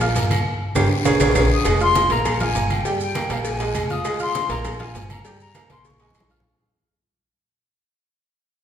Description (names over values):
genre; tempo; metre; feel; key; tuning
latin, salsa; 200 BPM; 4/4; straight; unclear; A4 = 440 Hz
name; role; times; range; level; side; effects
clear grand piano; accompaniment; 0.0-6.4 s; G3 to F6; -24 LUFS; right 3 dB; none
upright bass; bass; 0.0-6.4 s; F1 to Bb1; -24 LUFS; equal; none
congas; percussion; 0.0-6.5 s; none; -29 LUFS; left 1 dB; none
cowbell; percussion; 0.0-6.3 s; none; -30 LUFS; left 4 dB; none
maracas; percussion; 0.0-6.4 s; none; -36 LUFS; right 6 dB; none
agogo bells and timbales; percussion; 0.2-6.3 s; none; -27 LUFS; right 3 dB; none
guiro; percussion; 0.2-6.4 s; none; -36 LUFS; left 6 dB; none
claves; percussion; 0.3-6.3 s; none; -31 LUFS; left 2 dB; none
silver concert flute; melody; 1.5-6.3 s; F5 to Eb6; -23 LUFS; left 3 dB; none
room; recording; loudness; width
wet recital hall reverb, RT60 1.6 s; recorded in a church or concert hall; -18 LUFS; side -9 dB against mid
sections
0.0-1.7 A section; 1.7-6.4 B section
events
band accent 0.5-1.7; drum fill 1.1-1.7, 5.7-6.4; fade-out 1.7-6.4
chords
0.5 Gdim; 1.1 Bbm7; 1.7 Fm; 2.3 Bb5; 2.9 Gm; 3.5 Bb5; 4.1 Fm; 4.7 Bb5; 5.2 Gmadd11; 5.8 Bbm7